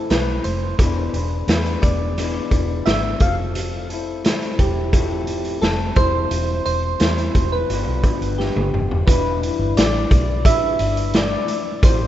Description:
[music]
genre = indie pop, bedroom pop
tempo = 87 BPM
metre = 4/4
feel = straight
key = unclear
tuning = A4 = 440 Hz
[part]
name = soft electric-piano-like synth keys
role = melody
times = 0.0-12.1 s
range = G4 to F5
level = -24 LUFS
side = right 2 dB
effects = tremolo, wide subtle chorus, tape echo
[part]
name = electric guitar through a small old amp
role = accompaniment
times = 0.0-12.1 s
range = G2 to B4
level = -26 LUFS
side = left 6 dB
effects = wide subtle chorus, vibrato effect
[part]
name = vintage muted fingered electric bass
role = bass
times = 0.0-12.1 s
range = E1 to E2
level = -23 LUFS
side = equal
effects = none
[part]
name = raw garage drum kit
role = drums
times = 0.1-12.0 s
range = hi-hat, kick drum, snare drum, toms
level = -20 LUFS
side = equal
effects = none
[sound]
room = small room ambience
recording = rough home demo mix, nothing above 7.9 kHz, faint mains hum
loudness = -17 LUFS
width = side -12 dB against mid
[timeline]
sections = 0.0-9.1 A section; 9.1-12.1 B section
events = drum fill 8.4-9.1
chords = 0.0 Amadd9; 0.8 E7; 3.2 Fmaj7; 6.0 C/E; 7.7 G7; 9.1 Em7

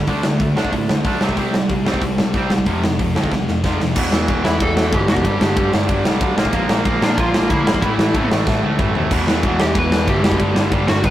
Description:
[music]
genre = punk rock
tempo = 186 BPM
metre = 4/4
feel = straight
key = unclear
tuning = A4 = 436 Hz
[part]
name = cranked stack guitar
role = riff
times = 0.0-11.1 s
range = E2 to D4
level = -22 LUFS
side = right 4 dB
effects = overdrive
[part]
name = distorted electric guitar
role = riff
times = 0.0-11.1 s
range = E2 to D4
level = -25 LUFS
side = left 5 dB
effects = overdrive
[part]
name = scooped high-gain guitar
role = riff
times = 0.0-4.0, 9.1-11.1 s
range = E2 to D4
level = -30 LUFS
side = left 1 dB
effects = distortion
[part]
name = overdriven picked electric bass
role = bass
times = 0.0-11.1 s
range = E1 to C3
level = -23 LUFS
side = equal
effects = none
[part]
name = big rock drum kit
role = drums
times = 0.0-11.1 s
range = crash cymbal, hi-hat, kick drum, ride cymbal, snare drum, toms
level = -19 LUFS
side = equal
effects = none
[part]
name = biting lead guitar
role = melody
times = 4.4-11.1 s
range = D4 to B4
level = -21 LUFS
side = equal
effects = overdrive
[sound]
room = light reverb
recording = rough rehearsal-room recording, tube saturation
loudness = -15 LUFS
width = side -13 dB against mid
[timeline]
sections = 0.0-4.0 A section; 4.0-11.1 B section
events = drum fill 3.3-4.0, 8.5-9.1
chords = 0.1 D5; 1.2 C5; 2.7 F5; 4.0 Em; 5.3 G; 6.4 Bb5; 7.8 A5; 9.1 Em; 10.4 G5

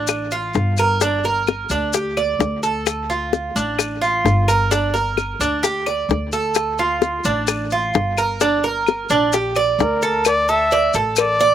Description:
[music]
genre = latin, Cuban son and guajira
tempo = 130 BPM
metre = 4/4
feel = straight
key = D minor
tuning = A4 = 440 Hz
[part]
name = Cuban tres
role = arpeggios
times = 0.0-11.5 s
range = D4 to D5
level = -19 LUFS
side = right 4 dB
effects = none
[part]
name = upright bass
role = bass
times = 0.0-11.5 s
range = G1 to D2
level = -25 LUFS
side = left 1 dB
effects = none
[part]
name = bongos and cowbell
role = percussion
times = 0.1-11.4 s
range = none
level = -21 LUFS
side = left 10 dB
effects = none
[part]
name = claves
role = percussion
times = 0.1-11.4 s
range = none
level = -28 LUFS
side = left 10 dB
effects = none
[part]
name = maracas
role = percussion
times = 0.1-11.5 s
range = none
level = -28 LUFS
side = left 7 dB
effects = none
[part]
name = breathy trumpet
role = melody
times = 9.8-11.5 s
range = Bb4 to E5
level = -17 LUFS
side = left 1 dB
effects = none
[sound]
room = little or no reverb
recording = recorded outdoors, with no room sound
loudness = -17 LUFS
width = side -10 dB against mid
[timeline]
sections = 0.0-10.3 A section; 10.3-11.5 B section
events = none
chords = 0.0 Dm; 1.0 Gm; 2.9 Dm; 4.7 Gm; 6.6 Dm; 8.4 Gm; 10.3 D5

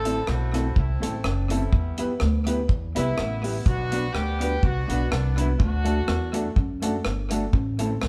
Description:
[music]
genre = ska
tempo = 124 BPM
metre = 4/4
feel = swing 55% on 8ths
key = A dorian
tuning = A4 = 439 Hz
[part]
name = mellow horn section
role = melody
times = 0.0-6.5 s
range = G3 to A4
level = -33 LUFS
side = equal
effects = none
[part]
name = upright bass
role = bass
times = 0.0-8.1 s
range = F#1 to F#2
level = -28 LUFS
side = equal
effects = none
[part]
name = mellow electric guitar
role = accompaniment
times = 0.1-7.9 s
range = A3 to A4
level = -34 LUFS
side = equal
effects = none
[part]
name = warm upright piano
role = stabs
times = 0.1-8.1 s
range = A3 to B4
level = -34 LUFS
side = equal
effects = none
[part]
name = deep reggae drum kit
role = drums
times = 0.1-8.1 s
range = hi-hat, kick drum, rim click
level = -28 LUFS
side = equal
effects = none
[sound]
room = moderate large studio reverb, RT60 0.9 s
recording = band playing live in one room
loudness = -24 LUFS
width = mono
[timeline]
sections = 0.0-8.1 A section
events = none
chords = 0.0 Am; 1.7 Em; 3.7 Bm; 5.6 D; 7.5 Am

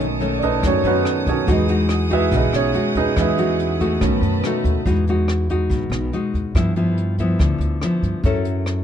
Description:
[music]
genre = bossa nova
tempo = 142 BPM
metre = 4/4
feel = straight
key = E major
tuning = A4 = 440 Hz
[part]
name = clear baby grand piano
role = accompaniment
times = 0.0-4.9 s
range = D#3 to E5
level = -21 LUFS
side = right 5 dB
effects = none
[part]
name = nylon-string guitar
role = accompaniment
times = 0.0-8.8 s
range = F#2 to A4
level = -22 LUFS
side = left 2 dB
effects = none
[part]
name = warm chamber violin section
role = sustained chords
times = 0.0-4.8 s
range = G#4 to D#6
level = -28 LUFS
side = equal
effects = none
[part]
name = upright bass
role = bass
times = 0.0-8.8 s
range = B1 to G2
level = -22 LUFS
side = equal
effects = none
[part]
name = jazz brush drum kit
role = drums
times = 0.0-8.8 s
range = hi-hat, kick drum, rim click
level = -26 LUFS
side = left 1 dB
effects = none
[sound]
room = little or no reverb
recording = dark, warm production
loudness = -17 LUFS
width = side -9 dB against mid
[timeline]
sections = 0.0-4.9 A section; 4.9-8.8 B section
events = grand piano solo 0.0-4.9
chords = 0.0 B9; 1.5 Emaj9; 4.0 B7; 4.9 Emaj9; 6.5 G6; 8.2 F#m7

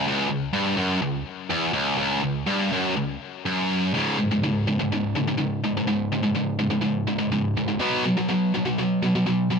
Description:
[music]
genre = metal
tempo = 124 BPM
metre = 4/4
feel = straight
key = unclear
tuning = A4 = 440 Hz
[part]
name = tight distorted guitar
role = solo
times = 0.0-9.6 s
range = C#2 to B3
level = -22 LUFS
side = equal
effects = distortion, ping-pong delay
[sound]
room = light reverb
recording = none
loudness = -22 LUFS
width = side -6 dB against mid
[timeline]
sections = 0.0-3.9 A section; 3.9-9.6 B section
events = none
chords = 0.0 N.C.; 3.9 C#5; 7.8 B5

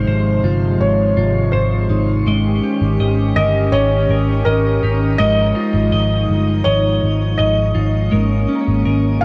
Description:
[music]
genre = dream pop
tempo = 82 BPM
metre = 4/4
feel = straight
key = Ab major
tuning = A4 = 443 Hz
[part]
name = felt-muted upright piano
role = melody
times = 0.0-9.2 s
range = Bb4 to F5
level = -23 LUFS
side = equal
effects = delay
[part]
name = hollow soft pad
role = sustained chords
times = 0.0-9.2 s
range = C3 to G4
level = -24 LUFS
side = equal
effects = chorus
[part]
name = clean electric guitar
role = arpeggios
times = 0.0-9.2 s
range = Ab3 to Eb5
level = -23 LUFS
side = equal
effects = lush chorus, delay
[part]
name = vintage muted picked electric bass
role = bass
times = 0.0-9.2 s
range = G1 to Ab1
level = -20 LUFS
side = equal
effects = none
[part]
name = concert harp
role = texture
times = 8.5-9.2 s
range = Bb4 to Db5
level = -35 LUFS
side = equal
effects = delay
[sound]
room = moderate shimmer reverb, RT60 5.7 s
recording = dark, warm production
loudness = -16 LUFS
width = mono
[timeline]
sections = 0.0-9.2 A section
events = none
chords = 0.0 Ab6; 2.3 Eb7; 5.2 Fm7; 8.1 Bbm7

